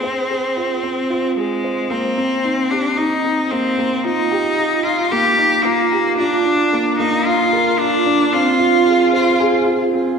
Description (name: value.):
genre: electronica.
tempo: 112 BPM.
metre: 4/4.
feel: straight.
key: C minor.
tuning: A4 = 440 Hz.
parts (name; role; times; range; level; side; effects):
clear cello; melody; 0.0-9.4 s; Ab3 to G4; -17 LUFS; left 1 dB; none.
dark grand piano; riff; 0.0-10.2 s; Bb3 to C5; -18 LUFS; right 2 dB; ping-pong delay.
room: wet scoring stage reverb, RT60 1.7 s.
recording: none.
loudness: -14 LUFS.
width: side -6 dB against mid.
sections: 0.0-1.9 A section; 1.9-10.2 B section.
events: build-up 1.9-10.2; break 9.4-10.2.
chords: 0.0 Fm; 1.9 Cm7; 4.0 Ebadd9; 6.2 Bb; 8.3 Fm.